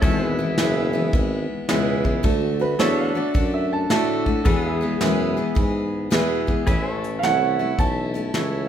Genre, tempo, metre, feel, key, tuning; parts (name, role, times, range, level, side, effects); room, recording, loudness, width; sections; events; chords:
honky-tonk and classic country; 108 BPM; 4/4; swing 65% on 8ths; A major; A4 = 437 Hz
picked steel-string acoustic guitar; accompaniment; 0.0-8.7 s; E2 to G#4; -26 LUFS; left 4 dB
pedal steel guitar; sustained chords; 0.0-8.7 s; D4 to F#5; -30 LUFS; left 1 dB
warm tuba; bass; 0.0-8.7 s; F#1 to A2; -25 LUFS; equal
soft brush drum kit; drums; 0.0-8.5 s; hi-hat, kick drum, snare drum; -23 LUFS; equal
bright concert grand piano; accompaniment; 0.6-8.7 s; D4 to C#5; -29 LUFS; right 6 dB
clear upright piano; second line; 2.2-8.7 s; A4 to A5; -25 LUFS; right 7 dB
moderate recital hall reverb, RT60 1.5 s; minimal, uncompressed stereo recording; -19 LUFS; side -9 dB against mid
0.0-6.7 A section; 6.7-8.7 B section
upright piano solo 6.7-8.7
0.0 E; 2.2 D; 4.5 E; 6.7 A